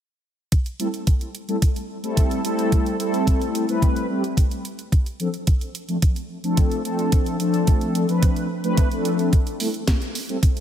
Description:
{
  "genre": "nu-disco, nu disco",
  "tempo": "109 BPM",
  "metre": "4/4",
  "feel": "straight",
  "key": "A minor",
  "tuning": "A4 = 440 Hz",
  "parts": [
    { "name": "electronic kick drum", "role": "drums", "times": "0.5-10.5 s", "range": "none", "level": "-18 LUFS", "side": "equal", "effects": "none" },
    { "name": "house drum kit", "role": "drums", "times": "0.5-10.6 s", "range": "hi-hat, snare drum", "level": "-31 LUFS", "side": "right 3 dB", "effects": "none" },
    { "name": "mellow synth brass", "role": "accompaniment", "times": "0.8-10.4 s", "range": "F3 to B4", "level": "-23 LUFS", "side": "left 1 dB", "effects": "chorus, vintage 12-bit sampler grit, tape echo" }
  ],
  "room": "moderate lush hall reverb, RT60 1.9 s",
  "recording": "dreamy mix soaked in reverb",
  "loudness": "-19 LUFS",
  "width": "side -10 dB against mid",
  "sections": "0.5-10.6 A section",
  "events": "none",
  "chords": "0.5 Am7; 4.6 Dm7; 9.3 Am7",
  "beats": "| 0.52 1.07 1.62 2.17 | 2.72 3.27 3.82 4.37 | 4.92 5.47 6.03 6.58 | 7.13 7.68 8.23 8.78 | 9.33 9.88 10.43"
}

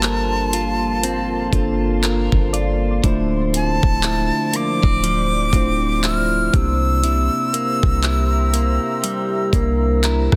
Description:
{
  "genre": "contemporary R&B",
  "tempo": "60 BPM",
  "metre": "4/4",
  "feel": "swing 58% on 16ths",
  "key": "D minor",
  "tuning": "A4 = 440 Hz",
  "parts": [
    { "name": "breathy bright jazz flute", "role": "melody", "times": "0.0-10.0 s", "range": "A5 to F6", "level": "-25 LUFS", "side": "equal", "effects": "none" },
    { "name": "muted felt-like synth keys", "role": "accompaniment", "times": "0.0-10.4 s", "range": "A3 to Bb5", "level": "-26 LUFS", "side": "equal", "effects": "chorus" },
    { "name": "deep dark ambient pad", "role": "sustained chords", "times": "0.3-10.4 s", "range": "F3 to C6", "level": "-31 LUFS", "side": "equal", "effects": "chorus, built-in reverb" },
    { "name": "direct-recorded clean electric guitar", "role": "arpeggios", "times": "0.0-10.4 s", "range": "C3 to Bb4", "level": "-28 LUFS", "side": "equal", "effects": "none" },
    { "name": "warm 808-style bass", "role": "bass", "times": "0.0-10.4 s", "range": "D1 to C2", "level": "-23 LUFS", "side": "equal", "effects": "none" },
    { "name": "smooth R&B drum kit", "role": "drums", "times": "0.0-10.4 s", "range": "handclaps, hi-hat, kick drum, rim click", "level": "-22 LUFS", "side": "equal", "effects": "none" },
    { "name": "soft round pluck", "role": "texture", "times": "0.0-3.5 s", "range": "D5 to F5", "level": "-35 LUFS", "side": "equal", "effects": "chorus, delay" }
  ],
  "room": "light reverb, digital ambience",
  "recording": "dense, heavily limited modern master",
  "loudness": "-19 LUFS",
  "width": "mono",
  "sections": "0.0-10.4 A section",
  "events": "synth keys fill 9.5-10.4",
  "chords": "0.0 Gm11; 3.0 Dm9; 6.5 C7",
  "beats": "0.04 1.04 2.04 | 3.04 4.04 5.04 6.04 | 7.04 8.04 9.04 10.04"
}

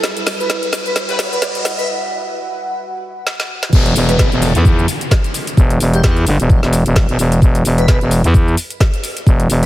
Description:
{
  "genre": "bass house",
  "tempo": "130 BPM",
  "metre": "4/4",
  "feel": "swing 57% on 16ths",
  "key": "E minor",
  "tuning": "A4 = 441 Hz",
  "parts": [
    { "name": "dark analog pad", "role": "sustained chords", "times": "0.0-9.7 s", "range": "G3 to F#5", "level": "-28 LUFS", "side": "right 1 dB", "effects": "chorus, sidechain pumping" },
    { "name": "garage drum kit", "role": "drums", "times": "0.0-9.7 s", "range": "crash cymbal, hi-hat, shaker, snare drum", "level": "-21 LUFS", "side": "equal", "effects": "none" },
    { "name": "riser and downlifter", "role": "sound effects", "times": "0.0-7.4 s", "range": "none", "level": "-23 LUFS", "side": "equal", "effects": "none" },
    { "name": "granular cloud pad", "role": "texture", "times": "0.0-1.9 s", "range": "E4 to B4", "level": "-30 LUFS", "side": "right 1 dB", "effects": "built-in reverb, sidechain pumping" },
    { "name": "airy dreamy lead", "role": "melody", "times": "0.4-9.7 s", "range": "G4 to B4", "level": "-24 LUFS", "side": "equal", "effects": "chorus, phaser, ping-pong delay" },
    { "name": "bright horn section", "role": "stabs", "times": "1.1-1.2 s", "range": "G3 to B4", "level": "-30 LUFS", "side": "left 3 dB", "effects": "none" },
    { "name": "growling FM bass", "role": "bass", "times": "3.7-9.7 s", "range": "E1 to E2", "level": "-13 LUFS", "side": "equal", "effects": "tube saturation, sidechain pumping" },
    { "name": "electronic kick drum", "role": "drums", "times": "3.7-9.4 s", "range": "none", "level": "-12 LUFS", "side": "equal", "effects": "none" }
  ],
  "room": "light reverb",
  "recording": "heavily compressed radio sound, multiband compression, high-pass filter",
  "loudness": "-12 LUFS",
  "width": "side -15 dB against mid",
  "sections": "0.0-3.7 A section; 3.7-9.7 B section",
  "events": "build-up 0.0-3.7; drum fill 0.0-1.9, 3.3-3.7; riser 0.0-1.9; filter sweep on analog synth pad 0.0-3.7; break 1.9-3.7; drop 3.7-9.7",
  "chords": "0.0 Emadd9",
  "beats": "| 0.04 0.50 0.96 1.42 | 1.88 2.34 2.80 3.27 | 3.73 4.19 4.65 5.11 | 5.57 6.04 6.50 6.96 | 7.42 7.88 8.34 8.80 | 9.27"
}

